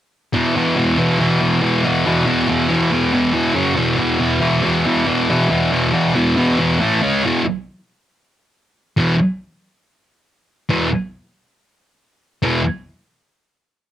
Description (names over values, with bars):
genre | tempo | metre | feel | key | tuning
rock | 139 BPM | 4/4 | straight | unclear | A4 = 440 Hz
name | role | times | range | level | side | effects
thick fuzz guitar | solo | 0.3-12.6 s | E2 to C#4 | -14 LUFS | equal | distortion
room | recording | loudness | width
light reverb | home recording on cassette | -15 LUFS | side -11 dB against mid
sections
0.3-7.2 A section; 7.2-13.9 B section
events
none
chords
0.3 E5; 3.6 F#5; 3.8 E5; 6.8 A5; 7.0 C#5; 7.2 E5